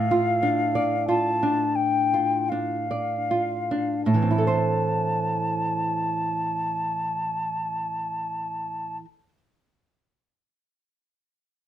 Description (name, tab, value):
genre	romantic duo for flute and classical guitar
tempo	24-33 BPM (dotted quarters)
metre	12/8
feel	rubato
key	A minor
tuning	A4 = 440 Hz
part	mellow hollow silver concert flute	melody	0.0-9.0 s	F5 to A5	-26 LUFS	left 2 dB	none
part	nylon-string guitar	accompaniment	0.0-9.4 s	A2 to D5	-25 LUFS	right 1 dB	none
room	light reverb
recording	none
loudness	-22 LUFS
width	side -11 dB against mid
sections	0.0-4.1 A section; 4.1-11.7 B section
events	slowing down 0.0-4.1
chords	0.0 Dm/A; 4.1 Am